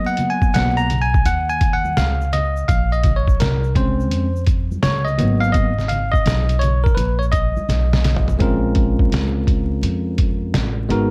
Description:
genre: hip hop, jazz-hop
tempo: 84 BPM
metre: 4/4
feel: swing 66% on 16ths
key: unclear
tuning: A4 = 440 Hz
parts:
  - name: bell-like tine electric piano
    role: accompaniment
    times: 0.0-11.1 s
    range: F#3 to A#5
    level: -23 LUFS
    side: equal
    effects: none
  - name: tube shaker and congas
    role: percussion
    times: 0.1-8.4 s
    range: none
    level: -31 LUFS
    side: equal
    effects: none
  - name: trip hop sampler-style drum kit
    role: drums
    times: 0.2-11.1 s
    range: hi-hat, kick drum, snare drum, toms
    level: -22 LUFS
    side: equal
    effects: none
  - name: upright bass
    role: bass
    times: 0.5-11.1 s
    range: Ab1 to F2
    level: -22 LUFS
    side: equal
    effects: none
room: light reverb, digital ambience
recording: dark, warm production, vinyl crackle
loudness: -18 LUFS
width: mono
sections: 0.0-8.4 A section; 8.4-11.1 B section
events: tine electric piano solo 0.0-8.4; drum fill 7.7-8.4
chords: 0.0 Bmaj13; 2.7 Bbm9; 5.2 Abm9; 8.4 Bbm9

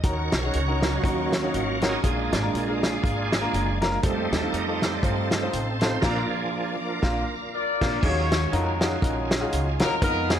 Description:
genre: uptempo gospel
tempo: 120 BPM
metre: 4/4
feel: swing 57% on 8ths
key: Eb minor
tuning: A4 = 440 Hz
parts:
  - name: clear baby grand piano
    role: accompaniment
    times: 0.0-10.4 s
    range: Bb2 to F5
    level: -29 LUFS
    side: left 1 dB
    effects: none
  - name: bright tonewheel organ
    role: sustained chords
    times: 0.0-10.4 s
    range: F3 to F5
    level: -29 LUFS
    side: right 3 dB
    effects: slow rotary speaker, chorus vibrato
  - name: warm studio string section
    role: sustained chords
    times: 0.0-8.0 s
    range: Db5 to D6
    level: -38 LUFS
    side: left 3 dB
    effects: none
  - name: upright bass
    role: bass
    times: 0.0-10.4 s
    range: Gb1 to G2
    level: -29 LUFS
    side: equal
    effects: none
  - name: warm soul drum kit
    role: drums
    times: 0.0-10.4 s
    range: crash cymbal, hi-hat, kick drum, snare drum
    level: -26 LUFS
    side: equal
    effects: none
  - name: warm horn section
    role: melody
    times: 7.5-10.4 s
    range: Cb4 to D5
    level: -27 LUFS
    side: left 3 dB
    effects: none
room: moderate recital hall reverb, RT60 1.6 s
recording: none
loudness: -22 LUFS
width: side -9 dB against mid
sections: 0.0-8.0 A section; 8.0-10.4 B section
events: tonewheel organ solo 0.0-8.0; band accent 6.0-8.0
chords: 0.0 Ebm7; 2.0 Bb7; 4.0 F7; 6.0 Bb; 8.0 Ebm11

